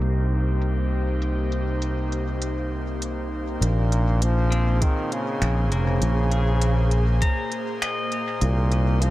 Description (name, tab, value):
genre	ambient dub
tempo	100 BPM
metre	4/4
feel	swing 58% on 16ths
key	Bb dorian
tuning	A4 = 435 Hz
part	airy breathy pad	sustained chords	0.0-9.1 s	Bb2 to C5	-29 LUFS	left 1 dB	chorus
part	pedal steel guitar	arpeggios	0.0-9.1 s	Bb3 to Bb5	-33 LUFS	left 2 dB	dub echo
part	fingered electric bass	bass	0.0-9.1 s	F1 to C2	-22 LUFS	equal	tube saturation
part	organic electronic drum kit	drums	0.0-9.1 s	finger snaps, hi-hat	-32 LUFS	equal	low-pass filter on hats, low-pass filter on snare, dub echo
part	bright trombone	melody	3.6-9.1 s	Bb2 to F3	-29 LUFS	right 1 dB	vintage 12-bit sampler grit, dub echo
part	electronic kick drum	drums	4.8-7.4 s	none	-22 LUFS	equal	none
room	light reverb, digital ambience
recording	low-pass filter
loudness	-21 LUFS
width	side -16 dB against mid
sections	0.0-3.6 A section; 3.6-9.1 B section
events	filter sweep on drum 0.0-3.6; filter sweep 0.0-3.6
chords	0.0 Cm7; 3.6 Bbm7; 8.4 Cm7